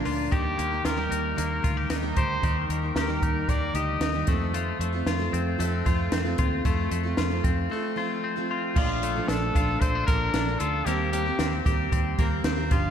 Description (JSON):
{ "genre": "jangly indie pop", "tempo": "114 BPM", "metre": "4/4", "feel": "straight", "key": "unclear", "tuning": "A4 = 436 Hz", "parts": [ { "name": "picked plugged-in steel-string acoustic guitar", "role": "accompaniment", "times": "0.0-12.9 s", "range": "G2 to Bb4", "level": "-32 LUFS", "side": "right 5 dB", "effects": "slapback echo" }, { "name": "twelve-string electric guitar", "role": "arpeggios", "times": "0.0-12.9 s", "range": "Eb3 to G4", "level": "-30 LUFS", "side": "left 6 dB", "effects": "slapback echo, ping-pong delay" }, { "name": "vintage muted fingered electric bass", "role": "bass", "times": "0.1-12.9 s", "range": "G1 to F2", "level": "-29 LUFS", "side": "equal", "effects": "none" }, { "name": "compact cocktail drum kit", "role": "drums", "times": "0.1-12.8 s", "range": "crash cymbal, hi-hat, kick drum, snare drum", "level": "-27 LUFS", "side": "equal", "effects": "none" }, { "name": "clear trumpet", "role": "melody", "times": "0.3-4.3, 8.8-12.9 s", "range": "F4 to Eb5", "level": "-30 LUFS", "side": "left 2 dB", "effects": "slapback echo, ping-pong delay" } ], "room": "moderate concert hall reverb, RT60 2.2 s", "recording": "big arena sound", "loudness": "-23 LUFS", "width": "side -8 dB against mid", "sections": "0.0-8.8 A section; 8.8-12.9 B section", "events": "break 7.7-8.8", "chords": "0.3 Eb; 4.3 F; 8.8 Bbmaj7; 10.9 Eb6", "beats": "| 0.33 0.85 1.38 1.91 | 2.43 2.96 3.49 4.01 | 4.54 5.07 5.59 6.12 | 6.65 7.18 7.70 8.23 | 8.76 9.29 9.81 10.34 | 10.87 11.39 11.92 12.45" }